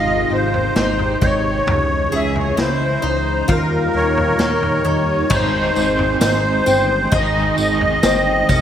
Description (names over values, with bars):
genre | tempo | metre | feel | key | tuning
dream pop | 66 BPM | 4/4 | straight | Ab major | A4 = 440 Hz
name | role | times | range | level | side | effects
musette accordion | melody | 0.0-8.6 s | Bb4 to Fb5 | -19 LUFS | equal | digital delay
soft string machine | sustained chords | 0.0-8.6 s | Bb2 to Eb5 | -24 LUFS | right 1 dB | ensemble chorus
picked twelve-string acoustic guitar | arpeggios | 0.0-8.6 s | C4 to Ab4 | -23 LUFS | left 3 dB | lush chorus, digital delay
fat analog bass | bass | 0.0-8.6 s | G1 to Eb2 | -22 LUFS | equal | none
vintage drum kit | drums | 0.5-8.6 s | crash cymbal, kick drum, snare drum, tambourine, toms | -22 LUFS | equal | gated reverb
crunchy overdriven guitar | accompaniment | 5.3-8.6 s | Ab2 to Eb4 | -24 LUFS | right 4 dB | tremolo, lush chorus
room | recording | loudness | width
moderate plate reverb, RT60 2.7 s | bright 1980s-style digital production | -15 LUFS | side -9 dB against mid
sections
0.0-5.3 A section; 5.3-8.6 B section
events
none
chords
0.0 Ab; 1.7 Dbmadd9; 3.5 Eb; 5.3 Ab